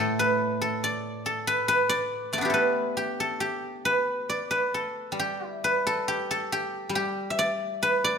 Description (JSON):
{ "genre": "chinese traditional, Chinese solo plucked strings", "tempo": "69 BPM", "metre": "2/4", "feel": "rubato", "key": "G gong mode", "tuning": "A4 = 440 Hz", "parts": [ { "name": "guzheng", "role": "solo", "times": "0.0-8.2 s", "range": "A2 to E5", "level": "-24 LUFS", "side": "equal", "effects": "none" } ], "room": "moderate recital hall reverb, RT60 1.7 s", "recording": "minimal, uncompressed stereo recording", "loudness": "-24 LUFS", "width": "side -6 dB against mid", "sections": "0.0-5.2 A section; 5.2-8.2 B section", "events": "none", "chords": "none" }